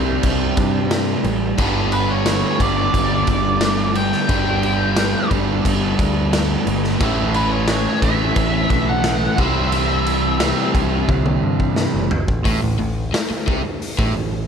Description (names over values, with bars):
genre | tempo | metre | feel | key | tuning
classic rock | 88 BPM | 4/4 | straight | unclear | A4 = 439 Hz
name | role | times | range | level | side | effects
overdriven electric guitar | riff | 0.0-14.4 s | G2 to E4 | -24 LUFS | left 11 dB | none
overdriven semi-hollow guitar | riff | 0.0-14.4 s | G2 to C4 | -23 LUFS | right 12 dB | none
picked electric bass | bass | 0.0-14.5 s | F#1 to G2 | -23 LUFS | equal | none
raw garage drum kit | drums | 0.2-14.1 s | crash cymbal, hi-hat, kick drum, snare drum, toms | -21 LUFS | equal | none
octave-fuzz lead guitar | melody | 1.9-11.7 s | B4 to G5 | -23 LUFS | equal | distortion, analog delay
room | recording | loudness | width
light reverb, small room ambience | none | -16 LUFS | side -7 dB against mid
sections
0.0-12.5 A section; 12.5-14.5 B section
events
drum fill 11.1-12.5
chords
0.0 C; 1.6 G; 7.0 A; 9.4 C; 12.5 A5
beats
0.24 0.92 | 1.59 2.27 2.94 3.62 | 4.30 4.97 5.65 6.33 | 7.01 7.69 8.37 9.05 | 9.73 10.41 11.09 11.77 | 12.45 13.13 13.82